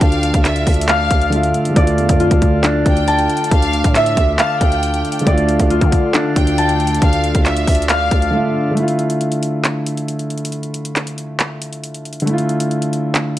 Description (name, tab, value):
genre	hip hop, trap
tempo	137 BPM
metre	4/4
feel	half-time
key	D minor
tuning	A4 = 439 Hz
part	warm symphonic violin section	second line	0.0-8.3 s	E5 to A5	-23 LUFS	equal	tape echo
part	dark baby grand piano	accompaniment	0.0-13.4 s	D3 to E5	-20 LUFS	equal	none
part	chamber organ, principal chorus	sustained chords	0.0-8.7 s	D3 to F4	-24 LUFS	right 1 dB	none
part	concert harp	arpeggios	0.0-9.6 s	D4 to A5	-18 LUFS	left 1 dB	tape echo
part	growling 808-style bass	bass	0.0-8.3 s	D2 to D3	-21 LUFS	equal	none
part	trap drum kit	drums	0.0-13.4 s	handclaps, hi-hat, kick drum	-17 LUFS	equal	none
room	small room reverb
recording	dry, gritty hardware recording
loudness	-13 LUFS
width	side -14 dB against mid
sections	0.0-8.8 A section; 8.8-13.4 B section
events	drums muted 8.3-8.8; break 8.8-13.4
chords	0.0 Dmadd9